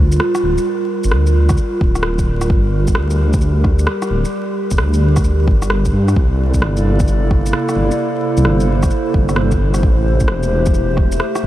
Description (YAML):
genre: future garage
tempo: 131 BPM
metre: 4/4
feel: swing 66% on 16ths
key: G dorian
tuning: A4 = 443 Hz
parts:
  - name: warbly tape-like pad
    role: sustained chords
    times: 0.0-11.5 s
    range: C3 to D5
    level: -19 LUFS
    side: equal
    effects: chorus, built-in reverb, sidechain pumping
  - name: dark detuned saw bass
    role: bass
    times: 0.0-11.5 s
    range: D1 to G2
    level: -15 LUFS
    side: equal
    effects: tube saturation, sidechain pumping
  - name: electronic shaker and rim click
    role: drums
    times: 0.1-11.4 s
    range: none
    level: -25 LUFS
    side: equal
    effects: small room ambience
  - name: electronic kick drum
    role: drums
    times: 1.5-11.1 s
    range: none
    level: -16 LUFS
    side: equal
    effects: small room ambience
room: light reverb, digital ambience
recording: vinyl crackle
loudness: -13 LUFS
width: side -14 dB against mid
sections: 0.0-11.5 A section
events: none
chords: 0.0 Gm7; 6.2 C13; 9.8 Am7